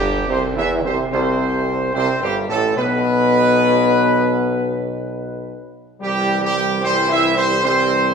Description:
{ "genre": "classical", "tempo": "74 BPM", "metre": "4/4", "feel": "straight", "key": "C major", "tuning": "A4 = 440 Hz", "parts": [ { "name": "warm trumpet section", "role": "melody", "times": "0.0-8.1 s", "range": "G4 to E5", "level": "-19 LUFS", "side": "right 2 dB", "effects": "none" }, { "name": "dark French horn section", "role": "sustained chords", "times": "0.0-8.1 s", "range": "G3 to E4", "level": "-23 LUFS", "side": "left 7 dB", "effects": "none" }, { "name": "mellow trombone section", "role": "sustained chords", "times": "0.0-8.1 s", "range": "G2 to G3", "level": "-23 LUFS", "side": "right 2 dB", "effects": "none" }, { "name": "clear tuba", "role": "bass", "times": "0.0-8.1 s", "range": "G1 to E2", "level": "-23 LUFS", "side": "right 3 dB", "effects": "none" } ], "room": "wet scoring stage reverb, RT60 1.9 s", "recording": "minimal, uncompressed stereo recording", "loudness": "-15 LUFS", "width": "side -6 dB against mid", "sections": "0.0-8.1 A section", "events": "none", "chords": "0.0 C/G; 2.8 N.C.; 6.0 C", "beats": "0.30 1.13 1.96 | 2.78 3.60 4.41 5.22 | 6.03 6.83 7.64" }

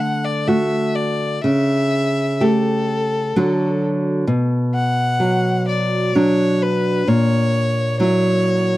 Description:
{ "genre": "romantic duo for violin and classical guitar", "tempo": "61-66 BPM", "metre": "3/4", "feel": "rubato", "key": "D major", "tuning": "A4 = 440 Hz", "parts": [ { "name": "rich violin", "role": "melody", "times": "0.0-8.8 s", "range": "A4 to F#5", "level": "-22 LUFS", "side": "left 2 dB", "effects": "none" }, { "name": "nylon-string guitar", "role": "accompaniment", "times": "0.0-8.8 s", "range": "A#2 to G4", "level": "-17 LUFS", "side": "right 1 dB", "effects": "none" } ], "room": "light reverb", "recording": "dry, close 1970s-style studio recording", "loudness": "-16 LUFS", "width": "side -16 dB against mid", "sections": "0.0-8.8 A section", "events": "none", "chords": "0.0 D; 1.4 A7/C#; 3.4 D; 4.3 Bm; 7.1 F#7/A#", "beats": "0.47 | 1.43 2.39 3.35 | 4.27 5.19 6.14 | 7.06 7.99" }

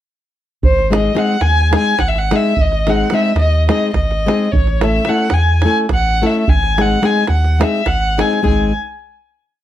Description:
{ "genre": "balkan folk, Balkan wedding band", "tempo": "214 BPM (eighths)", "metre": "7/8", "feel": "straight", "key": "G# phrygian dominant", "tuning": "A4 = 442 Hz", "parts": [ { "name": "dark violin", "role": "melody", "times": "0.6-8.7 s", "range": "B#4 to G#5", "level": "-18 LUFS", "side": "equal", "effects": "none" }, { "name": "soft dub sub bass", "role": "bass", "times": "0.6-8.7 s", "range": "G#1 to E2", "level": "-16 LUFS", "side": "equal", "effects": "none" }, { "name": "davul", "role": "percussion", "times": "0.6-8.7 s", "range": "none", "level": "-18 LUFS", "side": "right 2 dB", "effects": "none" }, { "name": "nylon-string guitar", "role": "accompaniment", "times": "0.9-8.7 s", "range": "G#3 to A4", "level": "-16 LUFS", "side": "left 3 dB", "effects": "none" } ], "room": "light reverb", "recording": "none", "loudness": "-12 LUFS", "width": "side -12 dB against mid", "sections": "0.6-8.4 A section; 8.4-9.6 final chord", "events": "none", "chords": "0.6 G#; 4.5 A; 6.5 G#", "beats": "| 0.62 0.90 1.18 1.46 1.74 2.01 2.29 | 2.57 2.85 3.12 3.40 3.68 3.96 4.24 | 4.52 4.80 5.08 5.36 5.64 5.92 6.20 | 6.48 6.76 7.04 7.32 7.60 7.88 8.17 | 8.45" }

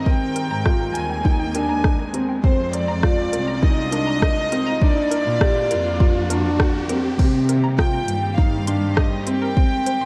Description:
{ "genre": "piano and strings electronica", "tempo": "101 BPM", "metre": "4/4", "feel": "straight", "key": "C minor", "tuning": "A4 = 443 Hz", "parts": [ { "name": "warm studio violin section", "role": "melody", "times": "0.0-10.1 s", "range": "C5 to Ab5", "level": "-28 LUFS", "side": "equal", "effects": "none" }, { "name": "rich chamber string section", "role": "sustained chords", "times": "0.0-10.1 s", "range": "Eb3 to Bb4", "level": "-33 LUFS", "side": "equal", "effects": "sidechain pumping" }, { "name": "riser", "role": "sound effects", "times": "0.9-7.2 s", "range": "none", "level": "-35 LUFS", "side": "equal", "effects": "none" }, { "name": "analog pluck", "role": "arpeggios", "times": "0.1-10.0 s", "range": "Bb4 to C6", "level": "-37 LUFS", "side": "equal", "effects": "chorus, sidechain pumping, delay" }, { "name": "felt-muted upright piano", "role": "riff", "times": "0.1-9.9 s", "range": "C4 to G4", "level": "-27 LUFS", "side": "equal", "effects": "delay" }, { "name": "electronic kick drum", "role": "drums", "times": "0.1-9.7 s", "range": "none", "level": "-20 LUFS", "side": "equal", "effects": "overdrive" }, { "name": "organic electronic drum kit", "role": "drums", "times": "0.4-10.0 s", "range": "crash cymbal, hi-hat, rim click", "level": "-29 LUFS", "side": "equal", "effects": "none" }, { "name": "rich studio cello section", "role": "bass", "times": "0.5-10.1 s", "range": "C2 to C3", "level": "-28 LUFS", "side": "equal", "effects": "sidechain pumping" } ], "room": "moderate lush hall reverb, RT60 2.6 s", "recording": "dark, warm production", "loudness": "-20 LUFS", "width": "mono", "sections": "0.0-7.2 A section; 7.2-10.1 B section", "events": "build-up 0.0-7.2; riser 0.9-7.2; drop 7.2-10.1", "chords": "0.1 Abmaj7; 2.4 Fm; 4.8 Bb; 7.2 Cm7", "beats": "| 0.06 0.66 1.25 1.85 | 2.44 3.03 3.63 4.22 | 4.82 5.41 6.00 6.60 | 7.19 7.79 8.38 8.97 | 9.57" }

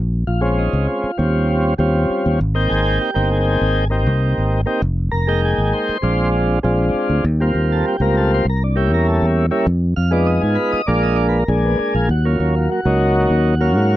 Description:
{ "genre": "electric jazz fusion", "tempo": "99 BPM", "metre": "4/4", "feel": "straight", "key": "unclear", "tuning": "A4 = 440 Hz", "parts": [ { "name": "fingered electric bass", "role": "bass", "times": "0.0-14.0 s", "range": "F1 to Ab2", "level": "-17 LUFS", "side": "equal", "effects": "none" }, { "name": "tonewheel organ", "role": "accompaniment", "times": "0.3-14.0 s", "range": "Gb3 to G5", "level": "-18 LUFS", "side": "equal", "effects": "slow rotary speaker" } ], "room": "little or no reverb", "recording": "dry, close 1970s-style studio recording", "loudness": "-15 LUFS", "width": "side -14 dB against mid", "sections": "0.0-14.0 A section", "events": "none", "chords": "0.0 Bbm7; 1.2 Eb13; 2.4 Abmaj9; 4.8 Fm11; 6.0 Bb9; 7.2 Eb69; 8.5 C7b9; 9.7 Fm7b5; 10.9 Bb7; 12.1 Ebm7", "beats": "0.57 1.18 1.79 | 2.39 3.00 3.61 4.21 | 4.82 5.43 6.03 6.64 | 7.25 7.85 8.46 9.06 | 9.67 10.28 10.88 11.49 | 12.09 12.70 13.30 13.91" }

